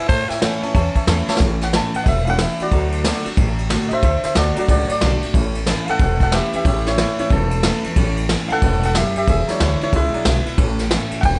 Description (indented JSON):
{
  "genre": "rockabilly",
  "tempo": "183 BPM",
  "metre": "4/4",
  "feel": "swing 64% on 8ths",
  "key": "A major",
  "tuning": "A4 = 445 Hz",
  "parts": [
    { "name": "growling tenor saxophone", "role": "melody", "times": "0.0-1.1 s", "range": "C#4 to C5", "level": "-26 LUFS", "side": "equal", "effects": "analog delay" },
    { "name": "clear upright piano", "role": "accompaniment", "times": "0.0-11.4 s", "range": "E3 to A5", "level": "-24 LUFS", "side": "equal", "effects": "none" },
    { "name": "picked steel-string acoustic guitar", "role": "accompaniment", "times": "0.0-11.4 s", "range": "E2 to F#4", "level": "-28 LUFS", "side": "equal", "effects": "none" },
    { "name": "upright bass", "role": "bass", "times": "0.1-11.4 s", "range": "E1 to A2", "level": "-23 LUFS", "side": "equal", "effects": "none" },
    { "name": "vintage brush drum kit", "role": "drums", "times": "0.1-11.3 s", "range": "kick drum, ride cymbal, snare drum", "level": "-23 LUFS", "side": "equal", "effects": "none" }
  ],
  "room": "light reverb",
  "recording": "nothing above 10.5 kHz",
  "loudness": "-18 LUFS",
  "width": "mono",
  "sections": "0.0-1.4 A section; 1.4-11.4 B section",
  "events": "upright piano fill 0.8-1.4; drum fill 1.2; upright piano solo 1.4-11.4",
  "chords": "0.1 A; 2.7 D; 5.3 A; 9.3 E7; 10.6 A"
}